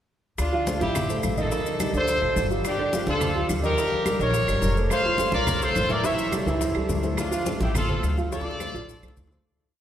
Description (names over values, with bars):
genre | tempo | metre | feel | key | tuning
latin, salsa | 212 BPM | 4/4 | straight | D minor | A4 = 437 Hz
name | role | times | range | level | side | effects
bright horn section | melody | 0.4-9.1 s | D4 to F5 | -26 LUFS | left 1 dB | none
upright bass | bass | 0.4-9.4 s | F1 to Eb2 | -28 LUFS | equal | none
bongos | percussion | 0.4-9.4 s | none | -37 LUFS | left 3 dB | none
claves | percussion | 0.4-9.2 s | none | -39 LUFS | right 4 dB | none
congas | percussion | 0.4-9.4 s | none | -31 LUFS | left 1 dB | none
maracas | percussion | 0.4-9.5 s | none | -39 LUFS | left 5 dB | none
dark baby grand piano | accompaniment | 0.5-9.4 s | D3 to F5 | -28 LUFS | right 2 dB | none
room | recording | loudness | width
wet cathedral reverb, RT60 5.8 s | recorded in a church or concert hall | -22 LUFS | side -10 dB against mid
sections
0.4-9.5 A section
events
fade-out 7.6-9.5; drum fill 8.3-9.5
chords
0.4 Dm7; 1.5 Cm69; 2.1 D7; 2.7 G5; 3.8 Eb9; 4.9 Fmaj7; 6.0 A7; 7.2 Dm7